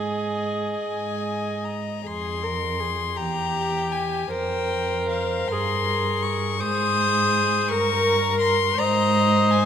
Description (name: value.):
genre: classical, slow romantic movement for string quartet.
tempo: 41-56 BPM (dotted quarters).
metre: 6/8.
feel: rubato.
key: F minor.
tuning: A4 = 440 Hz.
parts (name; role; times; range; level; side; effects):
rich violin; melody; 0.0-9.7 s; F5 to Eb6; -26 LUFS; left 8 dB; none.
dark violin; second line; 0.0-9.7 s; G4 to Eb5; -27 LUFS; left 2 dB; none.
rich viola; accompaniment; 0.0-9.7 s; G4 to Eb5; -26 LUFS; right 2 dB; none.
dark cello; bass; 0.0-9.7 s; E2 to Ab2; -28 LUFS; right 4 dB; none.
room: wet concert hall reverb, RT60 2.3 s.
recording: none.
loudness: -21 LUFS.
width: side -8 dB against mid.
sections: 0.0-2.1 A section; 2.1-9.7 B section.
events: none.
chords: 0.0 Ab5; 2.1 Fm; 3.2 Edim; 4.3 Fm; 6.6 Ab; 7.7 Gdim; 8.8 Ab.